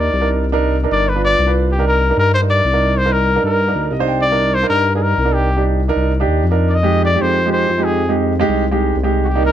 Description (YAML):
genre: Afro-Cuban jazz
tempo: 190 BPM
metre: 4/4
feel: straight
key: C minor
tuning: A4 = 441 Hz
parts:
  - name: warm trumpet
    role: melody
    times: 0.0-9.5 s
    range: F#4 to Eb5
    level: -17 LUFS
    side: left 2 dB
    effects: none
  - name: warm upright piano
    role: accompaniment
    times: 0.0-9.5 s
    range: Ab3 to G5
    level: -18 LUFS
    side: right 4 dB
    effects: none
  - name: smooth synth bass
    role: bass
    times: 0.0-9.5 s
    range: G1 to G2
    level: -17 LUFS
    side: left 1 dB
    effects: none
room: light reverb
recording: none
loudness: -13 LUFS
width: side -10 dB against mid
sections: 0.0-1.7 A section; 1.7-9.5 B section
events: trumpet solo 0.0-1.7; upright piano fill 3.8-4.2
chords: 0.0 Cm9; 1.1 G7; 1.7 Cm9; 6.8 Fm9